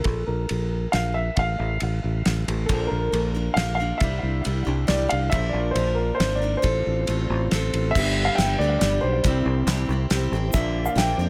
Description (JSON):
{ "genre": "folk rock and heartland rock", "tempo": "137 BPM", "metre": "3/4", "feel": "straight", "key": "unclear", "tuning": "A4 = 440 Hz", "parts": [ { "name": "dark baby grand piano", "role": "melody", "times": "0.0-11.3 s", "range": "A4 to G5", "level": "-29 LUFS", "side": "equal", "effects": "tape echo" }, { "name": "damped 70s drum kit", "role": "drums", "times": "0.0-11.1 s", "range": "crash cymbal, hi-hat, kick drum, ride cymbal, snare drum", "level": "-30 LUFS", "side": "equal", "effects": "tape echo" }, { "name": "fingered electric bass", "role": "bass", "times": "0.1-11.3 s", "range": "G1 to F2", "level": "-27 LUFS", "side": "equal", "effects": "none" }, { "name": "picked steel-string acoustic guitar", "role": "accompaniment", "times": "2.7-11.3 s", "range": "G2 to Bb4", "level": "-31 LUFS", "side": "equal", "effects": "tape echo" }, { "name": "tonewheel organ", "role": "sustained chords", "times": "8.0-11.3 s", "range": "G3 to D5", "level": "-39 LUFS", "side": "equal", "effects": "none" }, { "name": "egg shaker", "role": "percussion", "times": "10.5-11.0 s", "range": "none", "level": "-40 LUFS", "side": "equal", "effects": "none" } ], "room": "light reverb, studio reverb", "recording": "echo-heavy mix", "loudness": "-23 LUFS", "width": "mono", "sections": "0.0-7.9 A section; 7.9-11.3 B section", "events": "none", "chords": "0.1 Bb5; 1.4 F/A; 2.7 Bb; 4.0 Cadd9; 5.3 Bb; 6.6 F/A; 7.9 G; 9.2 C; 10.5 Bb", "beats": "| 0.06 0.50 0.94 | 1.38 1.82 2.25 | 2.69 3.13 3.57 | 4.01 4.45 4.89 | 5.32 5.76 6.20 | 6.64 7.07 7.51 | 7.95 8.38 8.81 | 9.25 9.68 10.12 | 10.55 10.98" }